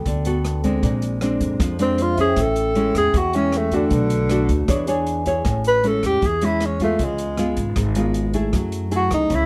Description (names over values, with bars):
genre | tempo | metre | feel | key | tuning
bossa nova | 156 BPM | 4/4 | straight | A major | A4 = 440 Hz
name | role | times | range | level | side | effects
nylon-string guitar | accompaniment | 0.0-9.5 s | G#2 to C#5 | -25 LUFS | equal | none
vibraphone with medium mallets | accompaniment | 0.0-5.6 s | A4 to G#5 | -31 LUFS | equal | none
upright bass | bass | 0.0-9.5 s | G#1 to F#2 | -27 LUFS | equal | none
open jazz drum kit | drums | 0.1-9.4 s | hi-hat, kick drum, rim click | -29 LUFS | equal | none
breathy tenor saxophone | melody | 1.8-9.5 s | D3 to B4 | -22 LUFS | equal | none
room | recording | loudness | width
light reverb | dark, warm production | -20 LUFS | mono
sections
0.0-5.5 A section; 5.5-9.5 A section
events
tenor saxophone solo 0.0-9.5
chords
0.0 Gmaj9; 0.8 Bb9; 2.4 Amaj7; 3.9 Bm7; 4.7 E6; 5.5 Amaj7; 7.0 C#7; 8.5 F#m9